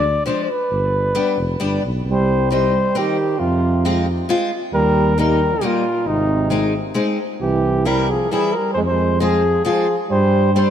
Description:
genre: alpine folk, alpine dance band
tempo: 134 BPM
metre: 3/4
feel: straight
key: C minor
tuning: A4 = 440 Hz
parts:
  - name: mellow flugelhorn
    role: melody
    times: 0.0-10.7 s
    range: Eb4 to D5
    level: -20 LUFS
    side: left 1 dB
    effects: none
  - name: picked old ladder-braced acoustic guitar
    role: accompaniment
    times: 0.0-10.7 s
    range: F3 to F4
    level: -23 LUFS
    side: left 3 dB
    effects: wide subtle chorus
  - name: dark tuba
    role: bass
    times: 0.0-10.7 s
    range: F1 to G2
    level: -20 LUFS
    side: equal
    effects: none
  - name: clear euphonium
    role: second line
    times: 2.1-10.7 s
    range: Bb2 to Ab3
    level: -22 LUFS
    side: right 4 dB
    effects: tape echo
room: moderate plate reverb, RT60 3.5 s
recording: dreamy mix soaked in reverb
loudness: -16 LUFS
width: side -9 dB against mid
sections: 0.0-10.7 A section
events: none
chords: 0.0 Ddim; 0.7 G; 2.1 Cm; 3.4 Fm; 4.7 Eb; 6.1 Ab; 7.4 C; 8.8 Fm; 10.1 Gsus4

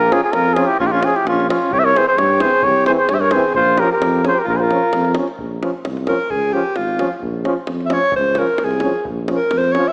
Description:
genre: balkan folk, Balkan brass band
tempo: 131 BPM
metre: 2/4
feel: straight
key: Bb dorian sharp4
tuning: A4 = 440 Hz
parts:
  - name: warm flugelhorn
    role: melody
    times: 0.0-5.2 s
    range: F4 to E5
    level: -18 LUFS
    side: equal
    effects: none
  - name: warm alto saxophone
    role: second line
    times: 0.0-9.9 s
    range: Db4 to E5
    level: -22 LUFS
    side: equal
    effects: none
  - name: mellow tuba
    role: bass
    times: 0.0-9.8 s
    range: Ab1 to G2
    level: -25 LUFS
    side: equal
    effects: none
  - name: clear French horn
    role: accompaniment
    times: 0.1-9.8 s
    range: C4 to Db4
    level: -28 LUFS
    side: equal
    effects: none
  - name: clear trombone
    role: accompaniment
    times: 0.1-9.9 s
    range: E3 to F3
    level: -28 LUFS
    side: equal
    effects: none
  - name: davul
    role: percussion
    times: 0.1-9.9 s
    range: none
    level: -30 LUFS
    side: equal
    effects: none
room: moderate concert hall reverb, RT60 2.0 s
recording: small speaker sound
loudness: -17 LUFS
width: mono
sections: 0.0-5.4 A section; 5.4-9.9 B section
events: alto saxophone solo 5.4-9.9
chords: 0.0 Bbm; 1.7 C; 3.6 Bbm; 6.3 Db; 7.2 Bbm; 8.1 Db; 9.1 Bbm

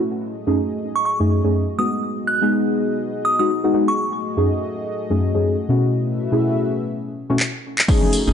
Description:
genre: deep house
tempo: 123 BPM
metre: 4/4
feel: swing 59% on 16ths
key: F# dorian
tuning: A4 = 440 Hz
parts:
  - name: warm analog pad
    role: sustained chords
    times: 0.0-8.3 s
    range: A3 to E5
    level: -27 LUFS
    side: left 2 dB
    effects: chorus, sidechain pumping
  - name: deep mellow chord stab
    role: stabs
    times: 0.5-8.3 s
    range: F#2 to G#4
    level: -19 LUFS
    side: left 1 dB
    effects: chorus, sidechain pumping, analog delay
  - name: glassy synth bell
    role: melody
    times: 1.0-4.0 s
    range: C#6 to F#6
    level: -22 LUFS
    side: right 2 dB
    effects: chorus, analog delay
  - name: house drum kit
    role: drums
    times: 7.4-8.2 s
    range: crash cymbal, handclaps, hi-hat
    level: -21 LUFS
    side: equal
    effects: overdrive
  - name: electronic hi-hat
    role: drums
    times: 7.9-8.3 s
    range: none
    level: -35 LUFS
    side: right 3 dB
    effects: none
  - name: electronic kick drum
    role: drums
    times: 7.9-8.0 s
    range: none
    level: -17 LUFS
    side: equal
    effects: overdrive
  - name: tambourine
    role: percussion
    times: 7.9-8.3 s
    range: none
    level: -29 LUFS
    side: left 3 dB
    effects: none
  - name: congas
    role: percussion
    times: 8.0-8.1 s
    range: none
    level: -27 LUFS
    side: left 2 dB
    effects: none
  - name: sub bass with octave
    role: bass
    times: 8.3 s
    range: F#1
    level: -17 LUFS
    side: equal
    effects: sidechain pumping
room: light reverb, digital ambience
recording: nothing above 10.6 kHz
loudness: -18 LUFS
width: side -8 dB against mid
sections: 0.0-7.9 A section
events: drum fill 7.4-7.9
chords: 0.1 F#m69; 2.0 G#m7; 4.0 F#m69; 5.9 B7sus4

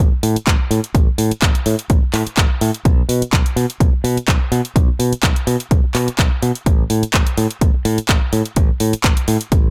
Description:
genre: filtered disco house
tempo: 126 BPM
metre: 4/4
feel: swing 54% on 16ths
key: unclear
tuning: A4 = 439 Hz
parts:
  - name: modern bright fingered electric bass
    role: bass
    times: 0.0-9.7 s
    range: A1 to B2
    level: -20 LUFS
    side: equal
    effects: sidechain pumping, low-pass filter
  - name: house drum kit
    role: drums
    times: 0.2-9.6 s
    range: handclaps, hi-hat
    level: -24 LUFS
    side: equal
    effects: overdrive, sidechain pumping on hats
  - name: electronic kick drum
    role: drums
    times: 0.5-9.6 s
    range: none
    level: -17 LUFS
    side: equal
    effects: overdrive
room: little or no reverb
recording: none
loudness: -16 LUFS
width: mono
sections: 0.0-9.7 A section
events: none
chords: none

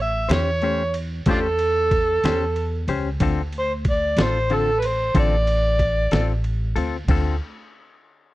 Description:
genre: slow blues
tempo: 62 BPM (dotted quarters)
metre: 12/8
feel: straight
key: D minor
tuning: A4 = 440 Hz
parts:
  - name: overdriven harmonica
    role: melody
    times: 0.0-6.4 s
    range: D4 to E5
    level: -21 LUFS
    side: right 1 dB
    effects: slapback echo
  - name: upright bass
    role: bass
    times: 0.0-7.4 s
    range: A1 to E2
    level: -24 LUFS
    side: equal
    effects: none
  - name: semi-hollow electric guitar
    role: accompaniment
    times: 0.3-7.4 s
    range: D3 to B#4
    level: -25 LUFS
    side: left 5 dB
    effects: harmonic tremolo
  - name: lo-fi sampler-style drum kit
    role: drums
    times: 0.3-7.2 s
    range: crash cymbal, kick drum, ride cymbal, snare drum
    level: -24 LUFS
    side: equal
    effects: none
room: studio ambience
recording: dry, close 1970s-style studio recording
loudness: -19 LUFS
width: side -17 dB against mid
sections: 0.0-7.1 A section; 7.1-8.3 B section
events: kick and snare drop out 6.8-7.1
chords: 0.0 A7#9; 3.2 Dm7

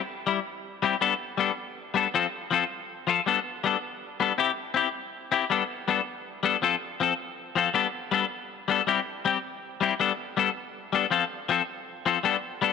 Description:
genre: highlife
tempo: 107 BPM (dotted quarters)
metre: 12/8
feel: straight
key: G mixolydian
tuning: A4 = 440 Hz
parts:
  - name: clean electric guitar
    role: solo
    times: 0.3-12.7 s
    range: F3 to A4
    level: -24 LUFS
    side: left 8 dB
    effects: none
room: moderate plate reverb, RT60 3.1 s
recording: none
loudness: -24 LUFS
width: side -6 dB against mid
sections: 0.0-1.0 A section; 1.0-12.7 B section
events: none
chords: 0.0 C; 1.0 Gadd9; 2.1 F; 3.3 Gadd9; 4.4 C; 5.5 Gadd9; 6.6 F; 7.8 Gadd9; 8.9 C; 10.0 Gadd9; 11.1 F

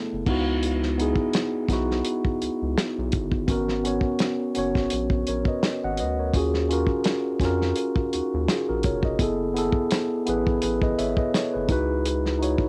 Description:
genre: R&B, neo-soul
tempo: 84 BPM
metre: 4/4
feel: swing 54% on 16ths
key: unclear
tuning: A4 = 440 Hz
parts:
  - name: mellow tine electric piano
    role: accompaniment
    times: 0.0-12.7 s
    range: A3 to Gb5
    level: -27 LUFS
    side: equal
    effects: cassette tape
  - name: round analog bass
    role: bass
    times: 0.1-12.7 s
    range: F1 to F2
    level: -32 LUFS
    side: equal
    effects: none
  - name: warm soul drum kit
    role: drums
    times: 0.3-12.7 s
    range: crash cymbal, hi-hat, kick drum, snare drum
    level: -29 LUFS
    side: equal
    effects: cassette tape
room: light reverb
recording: home recording on cassette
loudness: -24 LUFS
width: mono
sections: 0.0-12.7 A section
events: none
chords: 0.3 Dbm11; 3.5 Abm11; 6.3 Ebm11; 9.2 Gbm11; 11.7 Dbm11

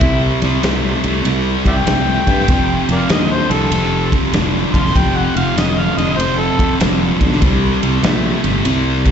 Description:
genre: blues rock power trio and southern rock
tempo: 97 BPM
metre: 4/4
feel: swing 66% on 8ths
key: unclear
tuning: A4 = 439 Hz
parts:
  - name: overdriven harmonica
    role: melody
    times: 0.0-6.7 s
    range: E4 to C6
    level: -22 LUFS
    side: left 1 dB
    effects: slapback echo, tape echo
  - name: thick fuzz guitar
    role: riff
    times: 0.0-9.1 s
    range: F2 to A3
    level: -17 LUFS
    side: equal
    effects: distortion, slapback echo
  - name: sustaining fretless electric bass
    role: bass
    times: 0.0-9.1 s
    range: F1 to G2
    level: -19 LUFS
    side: equal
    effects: none
  - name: big rock drum kit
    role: drums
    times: 0.0-9.1 s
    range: kick drum, ride cymbal, snare drum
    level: -19 LUFS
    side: equal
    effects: none
room: light reverb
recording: live gig heard through the venue's PA, recital hall reverb, nothing above 7.9 kHz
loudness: -13 LUFS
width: side -8 dB against mid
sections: 0.0-9.1 A section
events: harmonica solo 0.0-9.1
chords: 0.0 C5; 2.5 F; 7.4 C5

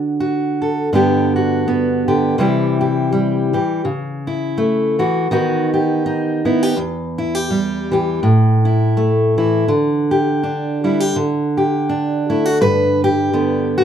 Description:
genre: folk, solo fingerstyle acoustic guitar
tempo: 82 BPM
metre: 4/4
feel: swing 57% on 8ths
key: G major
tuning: A4 = 441 Hz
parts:
  - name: fingerpicked steel-string acoustic guitar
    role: solo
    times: 0.0-13.8 s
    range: E2 to B4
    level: -15 LUFS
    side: equal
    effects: none
room: light reverb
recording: band playing live in one room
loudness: -15 LUFS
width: side -9 dB against mid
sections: 0.9-12.6 A section; 12.6-13.8 B section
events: none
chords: 0.0 D; 0.9 G; 2.4 C; 3.8 A/C#; 5.3 B/D#; 6.8 Em; 8.2 A5; 9.7 Dsus4; 11.2 D5; 12.6 G

